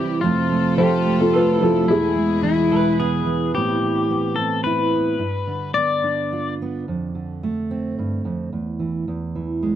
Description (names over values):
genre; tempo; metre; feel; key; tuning
acoustic folk-pop ballad; 109 BPM; 3/4; straight; A minor; A4 = 440 Hz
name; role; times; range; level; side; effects
pedal steel guitar; second line; 0.0-6.5 s; E4 to D5; -22 LUFS; left 6 dB; none
fingerpicked steel-string acoustic guitar; accompaniment; 0.0-9.8 s; E2 to F4; -21 LUFS; right 3 dB; none
rich studio string section; sustained chords; 0.0-3.5 s; B2 to A4; -27 LUFS; left 2 dB; none
felt-muted upright piano; melody; 0.8-3.0 s; E4 to C5; -20 LUFS; left 1 dB; none
electric guitar through a small old amp; arpeggios; 0.8-3.8 s; G4 to B4; -28 LUFS; right 6 dB; tremolo
room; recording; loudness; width
small room reverb; dry, close 1970s-style studio recording; -18 LUFS; side -10 dB against mid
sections
0.0-3.6 A section; 3.6-9.8 B section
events
pedal steel guitar solo 3.6-9.8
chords
0.2 F; 1.9 E; 3.6 Amadd9; 5.2 G7; 6.9 Dm7/F; 8.5 N.C.; 9.1 E